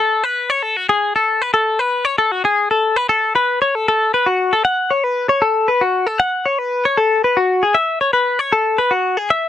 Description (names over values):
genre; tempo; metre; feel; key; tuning
rock; 77 BPM (dotted quarters); 6/8; straight; unclear; A4 = 439 Hz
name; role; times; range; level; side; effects
direct-recorded clean electric guitar; solo; 0.0-9.5 s; F#4 to F#5; -14 LUFS; left 2 dB; analog chorus
room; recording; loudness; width
light reverb; dry, close 1970s-style studio recording; -14 LUFS; side -10 dB against mid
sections
0.0-3.9 A section; 3.9-9.5 B section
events
none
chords
none